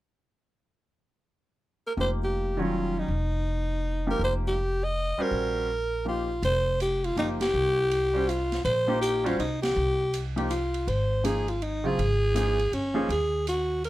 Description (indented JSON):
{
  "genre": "modal jazz",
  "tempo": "162 BPM",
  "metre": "3/4",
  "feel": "swing 64% on 8ths",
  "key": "F minor",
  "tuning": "A4 = 436 Hz",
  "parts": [
    { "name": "growling alto saxophone", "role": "melody", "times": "1.9-13.9 s", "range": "Db4 to Eb5", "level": "-27 LUFS", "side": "equal", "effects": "none" },
    { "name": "warm concert grand piano", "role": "accompaniment", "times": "2.0-13.1 s", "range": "Db3 to C5", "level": "-30 LUFS", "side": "equal", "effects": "none" },
    { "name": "upright bass", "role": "bass", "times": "2.0-13.9 s", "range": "F1 to Eb2", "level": "-30 LUFS", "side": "equal", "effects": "none" },
    { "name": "open jazz drum kit", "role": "drums", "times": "6.4-13.9 s", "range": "hi-hat, ride cymbal, snare drum", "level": "-40 LUFS", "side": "right 3 dB", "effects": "none" }
  ],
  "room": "light reverb",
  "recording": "none",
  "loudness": "-24 LUFS",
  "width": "side -16 dB against mid",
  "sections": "0.9-2.0 A section; 2.0-6.4 B section; 6.4-13.9 C section",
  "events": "band accent 7.4, 9.6",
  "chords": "0.9 N.C.; 2.0 F9sus4; 10.9 Absus2"
}